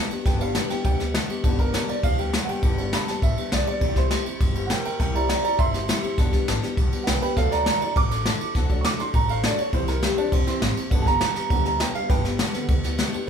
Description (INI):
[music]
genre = rockabilly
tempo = 203 BPM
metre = 4/4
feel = straight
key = G major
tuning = A4 = 440 Hz
[part]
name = picked steel-string acoustic guitar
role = accompaniment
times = 0.0-13.3 s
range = G2 to A4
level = -31 LUFS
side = left 5 dB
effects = none
[part]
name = upright bass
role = bass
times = 0.1-13.2 s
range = G1 to D2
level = -29 LUFS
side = equal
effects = none
[part]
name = jazz brush drum kit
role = drums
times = 0.1-13.2 s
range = kick drum, ride cymbal, snare drum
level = -23 LUFS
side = equal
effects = none
[part]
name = warm upright piano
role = accompaniment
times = 0.3-13.3 s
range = D3 to D6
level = -26 LUFS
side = right 2 dB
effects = none
[sound]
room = moderate large studio reverb, RT60 0.8 s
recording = band playing live in one room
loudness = -20 LUFS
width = side -7 dB against mid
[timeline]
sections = 0.0-13.3 A section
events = upright piano solo 0.0-13.3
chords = 0.0 G; 3.8 C; 6.2 G; 7.4 D; 9.7 C; 10.9 G